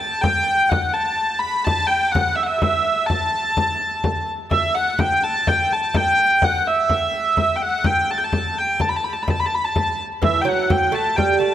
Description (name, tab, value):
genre	medieval dance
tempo	84 BPM (dotted quarters)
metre	6/8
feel	straight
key	unclear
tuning	A4 = 440 Hz
part	rich hurdy-gurdy	melody	0.0-11.5 s	E5 to B5	-18 LUFS	equal	tape echo
part	frame drum	percussion	0.0-11.5 s	none	-24 LUFS	left 2 dB	none
part	lute	second line	10.2-11.5 s	E3 to A3	-20 LUFS	right 6 dB	none
room	moderate scoring stage reverb, RT60 1.6 s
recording	none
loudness	-17 LUFS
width	side -11 dB against mid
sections	0.0-10.2 A section; 10.2-11.5 A section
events	none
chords	none